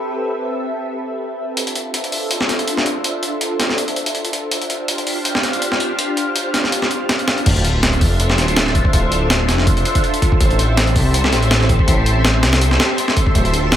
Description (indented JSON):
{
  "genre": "drum and bass, jungle",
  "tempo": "163 BPM",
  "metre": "4/4",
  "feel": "swing 54% on 16ths",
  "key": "D dorian",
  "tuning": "A4 = 440 Hz",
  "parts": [
    { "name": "soft string machine", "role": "sustained chords", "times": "0.0-13.8 s", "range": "C4 to F5", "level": "-21 LUFS", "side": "equal", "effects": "phaser, ensemble chorus, vintage 12-bit sampler grit" },
    { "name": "jungle sampler-style drum kit", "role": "drums", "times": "1.6-13.8 s", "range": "crash cymbal, hi-hat, kick drum, snare drum", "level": "-17 LUFS", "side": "equal", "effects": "overdrive" },
    { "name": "detuned saw bass", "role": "bass", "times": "7.5-13.8 s", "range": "D1 to C2", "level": "-17 LUFS", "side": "equal", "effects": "none" },
    { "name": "sub drop", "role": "sound effects", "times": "7.5-8.9 s", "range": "none", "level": "-24 LUFS", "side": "equal", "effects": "none" },
    { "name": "wind-like tuned noise texture", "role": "texture", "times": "8.0-13.8 s", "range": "C5 to C6", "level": "-28 LUFS", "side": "left 2 dB", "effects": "built-in reverb" }
  ],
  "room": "light reverb",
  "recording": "none",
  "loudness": "-15 LUFS",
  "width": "side -11 dB against mid",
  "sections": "0.0-7.5 A section; 7.5-13.8 B section",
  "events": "filter sweep on string machine 0.0-7.5; drop 7.5-13.8; impact 7.5-8.9",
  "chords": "0.0 Am9; 1.6 Dm9; 4.5 G7sus4; 7.5 Dm9; 10.4 Am7"
}